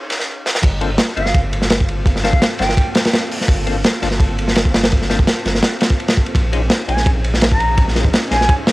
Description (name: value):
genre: drum and bass, jungle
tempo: 168 BPM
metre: 4/4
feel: swing 53% on 16ths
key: G minor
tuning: A4 = 439 Hz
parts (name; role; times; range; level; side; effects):
- soft string machine; sustained chords; 0.0-8.7 s; Bb3 to Db5; -28 LUFS; equal; ensemble chorus, cassette tape
- crunchy breakbeat drum kit; drums; 0.1-8.7 s; crash cymbal, hi-hat, kick drum, ride cymbal, snare drum; -15 LUFS; equal; high-pass filter on kick, cassette tape, high-pass filter on cymbals, high-pass filter on hats, high-pass filter on snare, high-pass filter on room
- saturated sub bass; bass; 0.6-8.5 s; G1 to Bb1; -21 LUFS; equal; tube saturation
- percussive tonewheel organ; stabs; 0.8-8.4 s; Bb3 to C5; -27 LUFS; left 6 dB; chorus vibrato, slow rotary speaker, cassette tape, dub echo
- mellow concert flute; melody; 1.2-2.9, 6.9-8.5 s; F5 to Bb5; -22 LUFS; equal; cassette tape, dub echo
room: light reverb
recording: home recording on cassette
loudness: -14 LUFS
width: side -20 dB against mid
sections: 0.6-8.7 A section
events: drum fill 0.5; drop 0.6-8.7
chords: 0.0 Bbm11; 0.6 Gm11; 6.3 Bbm11